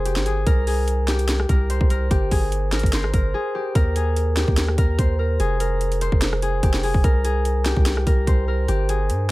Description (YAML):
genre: hip hop, trap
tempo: 146 BPM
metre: 4/4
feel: half-time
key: Eb major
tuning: A4 = 440 Hz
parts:
  - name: concert harp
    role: melody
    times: 0.0-9.3 s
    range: G4 to C5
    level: -24 LUFS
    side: left 1 dB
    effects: none
  - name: long sustained 808-style bass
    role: bass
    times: 0.0-9.3 s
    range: F1 to G2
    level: -22 LUFS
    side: equal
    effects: none
  - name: trap drum kit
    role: drums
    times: 0.1-9.2 s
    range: hi-hat, kick drum, rim click, snare drum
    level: -21 LUFS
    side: equal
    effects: none
room: little or no reverb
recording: none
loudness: -18 LUFS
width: side -19 dB against mid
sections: 0.0-3.8 A section; 3.8-9.3 B section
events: break 3.3-3.8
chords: 0.5 C5; 2.1 Gmadd11; 3.8 Eb; 5.4 F5; 7.0 C5; 8.7 G5